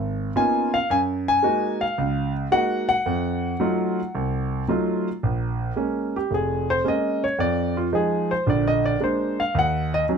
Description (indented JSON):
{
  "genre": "solo jazz",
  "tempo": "111 BPM",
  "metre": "4/4",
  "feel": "swing 69% on 8ths",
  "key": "Bb minor",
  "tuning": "A4 = 440 Hz",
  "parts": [
    { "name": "warm concert grand piano", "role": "solo", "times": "0.0-10.2 s", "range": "F1 to Ab5", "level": "-21 LUFS", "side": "equal", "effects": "none" }
  ],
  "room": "light reverb",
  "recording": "close, detailed microphones",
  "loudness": "-21 LUFS",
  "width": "side -6 dB against mid",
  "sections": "0.0-5.2 A section; 5.2-10.2 B section",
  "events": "grand piano solo 5.2-10.2",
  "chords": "0.0 Db13; 0.9 Gb69; 3.1 F7b9; 5.2 Bbm7; 7.4 Fm7; 8.5 Bb7; 9.6 Ebm7"
}